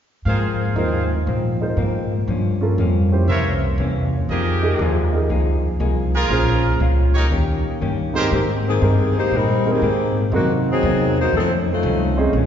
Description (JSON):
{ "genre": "jazz", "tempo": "119 BPM", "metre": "4/4", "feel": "swing 68% on 8ths", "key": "Ab major", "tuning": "A4 = 441 Hz", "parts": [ { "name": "hollow-body jazz guitar", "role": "accompaniment", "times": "0.3-12.5 s", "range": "F2 to Bb4", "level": "-23 LUFS", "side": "left 2 dB", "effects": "none" }, { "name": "brilliant trumpet section", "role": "stabs", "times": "0.3-8.3 s", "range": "Eb4 to F5", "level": "-25 LUFS", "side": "right 2 dB", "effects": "none" }, { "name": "upright bass", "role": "bass", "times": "0.3-12.5 s", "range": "Bb1 to Bb2", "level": "-20 LUFS", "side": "equal", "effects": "none" }, { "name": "warm baby grand piano", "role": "accompaniment", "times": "0.8-12.3 s", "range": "Ab2 to C5", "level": "-25 LUFS", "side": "right 3 dB", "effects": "none" }, { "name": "mellow saxophone section", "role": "melody", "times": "8.3-12.2 s", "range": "Eb3 to C5", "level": "-20 LUFS", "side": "left 2 dB", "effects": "none" } ], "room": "wet concert hall reverb, RT60 2.3 s", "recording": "heard from further back in the room, nothing above 7.5 kHz", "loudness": "-17 LUFS", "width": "side -9 dB against mid", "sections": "0.3-8.3 A section; 8.3-12.5 B section", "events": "none", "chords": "0.3 Ab69; 2.3 Gm7b5; 3.3 C7b9; 4.3 Fm11; 6.3 Bbm7; 7.3 Eb7; 8.3 Abmaj9; 10.3 Cm7b5; 11.3 F7b13", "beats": "| 0.26 0.77 1.27 1.77 | 2.28 2.78 3.28 3.79 | 4.29 4.79 5.30 5.80 | 6.30 6.81 7.31 7.82 | 8.32 8.82 9.32 9.83 | 10.33 10.83 11.34 11.84 | 12.34" }